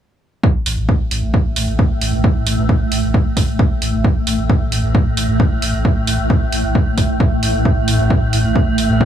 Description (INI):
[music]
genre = driving peak-time techno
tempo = 133 BPM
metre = 4/4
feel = straight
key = unclear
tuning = A4 = 441 Hz
[part]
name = swarming drone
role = drone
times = 1.1-9.1 s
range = A2 to A3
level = -19 LUFS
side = equal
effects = built-in reverb, sidechain pumping
[part]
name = electronic kick drum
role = drums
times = 0.4-9.1 s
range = none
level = -15 LUFS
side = equal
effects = none
[part]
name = saturated sub bass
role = bass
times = 0.7-9.0 s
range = A1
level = -22 LUFS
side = equal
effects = tube saturation, sidechain pumping, low-pass filter
[part]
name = electronic hi-hat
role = drums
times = 0.7-8.9 s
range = none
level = -23 LUFS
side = right 3 dB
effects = sidechain pumping on hats
[sound]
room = little or no reverb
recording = none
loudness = -14 LUFS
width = side -10 dB against mid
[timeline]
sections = 0.4-9.1 A section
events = none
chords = none